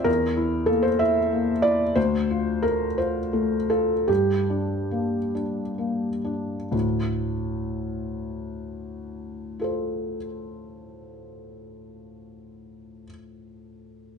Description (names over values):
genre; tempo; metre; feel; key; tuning
neoclassical minimalist piano; 41-64 BPM (dotted quarters); 6/8; rubato; D minor; A4 = 440 Hz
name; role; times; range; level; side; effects
felt-muted upright piano; solo; 0.0-14.2 s; D2 to E5; -23 LUFS; equal; slapback echo
room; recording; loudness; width
light reverb; nothing above 10.3 kHz; -22 LUFS; side -6 dB against mid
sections
0.0-6.7 A section; 6.7-12.4 B section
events
slowing down 1.0-6.7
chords
0.1 Bbmaj9#11/E; 2.0 Dm7; 4.1 Gm; 6.7 Dm7